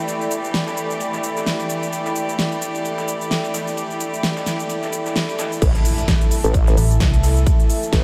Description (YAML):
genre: bass house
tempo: 130 BPM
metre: 4/4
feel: swing 57% on 16ths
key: unclear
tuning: A4 = 440 Hz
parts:
  - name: warm chamber string section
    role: sustained chords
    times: 0.0-8.0 s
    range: E3 to E5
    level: -28 LUFS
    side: equal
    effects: sidechain pumping, low-pass filter
  - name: airy breathy pad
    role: texture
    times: 0.0-8.0 s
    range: E4 to B5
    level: -30 LUFS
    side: equal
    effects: chorus, sidechain pumping
  - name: big-room dance drum kit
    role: drums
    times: 0.1-8.0 s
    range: crash cymbal, hi-hat, shaker, snare drum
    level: -28 LUFS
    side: equal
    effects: none
  - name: breakbeat sampler-style drum kit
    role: drums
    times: 0.1-8.0 s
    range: hi-hat, snare drum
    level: -39 LUFS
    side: equal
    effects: none
  - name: vowel-sweep wobble bass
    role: bass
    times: 5.6-8.0 s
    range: A1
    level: -21 LUFS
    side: equal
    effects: chorus, tube saturation, sidechain pumping
  - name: electronic kick drum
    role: drums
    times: 5.6-8.0 s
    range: none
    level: -19 LUFS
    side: equal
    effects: none
  - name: impact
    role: sound effects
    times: 5.7-7.5 s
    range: none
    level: -30 LUFS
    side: equal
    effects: none
  - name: metallic FM bass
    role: bass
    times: 6.8-7.4 s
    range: A1 to C2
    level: -18 LUFS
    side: equal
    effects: overdrive, sidechain pumping
room: moderate huge ambient reverb, RT60 8.3 s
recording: dreamy mix soaked in reverb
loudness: -20 LUFS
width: mono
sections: 0.0-5.6 A section; 5.6-8.0 B section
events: drop 5.6-8.0; impact 5.6-7.5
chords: 0.0 A5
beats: | 0.08 0.54 1.00 1.47 | 1.93 2.39 2.85 3.31 | 3.77 4.23 4.70 5.16 | 5.62 6.08 6.54 7.00 | 7.46 7.93